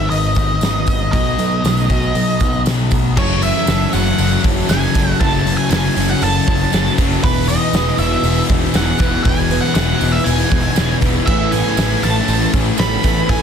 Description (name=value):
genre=rock, shoegaze and dream pop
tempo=118 BPM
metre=4/4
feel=straight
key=unclear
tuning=A4 = 441 Hz
part: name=octave-fuzz lead guitar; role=melody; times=0.0-13.4 s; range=B4 to B5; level=-21 LUFS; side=right 2 dB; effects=distortion, tape echo
part: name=picked twelve-string acoustic guitar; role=arpeggios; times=0.0-13.4 s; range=D#3 to A4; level=-26 LUFS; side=right 12 dB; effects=analog chorus, tape echo
part: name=electric guitar through a small old amp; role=riff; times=0.0-13.4 s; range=E2 to B4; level=-30 LUFS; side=right 14 dB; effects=reverse reverb
part: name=thick fuzz guitar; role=riff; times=0.0-13.4 s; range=E2 to B3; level=-20 LUFS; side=left 9 dB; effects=distortion, analog chorus
part: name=overdriven picked electric bass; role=bass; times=0.0-13.4 s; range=E1 to B1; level=-20 LUFS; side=right 1 dB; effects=none
part: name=big rock drum kit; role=drums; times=0.1-13.4 s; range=crash cymbal, hi-hat, kick drum, snare drum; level=-19 LUFS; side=equal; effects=none
part: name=tambourine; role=percussion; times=0.1-13.2 s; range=none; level=-33 LUFS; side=right 21 dB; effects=none
part: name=overdriven electric guitar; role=riff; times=3.2-13.4 s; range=E2 to A3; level=-23 LUFS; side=right 2 dB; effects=none
room=small room ambience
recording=dense, heavily limited modern master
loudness=-13 LUFS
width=side -7 dB against mid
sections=0.0-3.2 A section; 3.2-13.4 B section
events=none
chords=0.0 G#m; 1.1 B7; 3.2 F#m7; 7.2 Emaj7; 11.3 Amaj9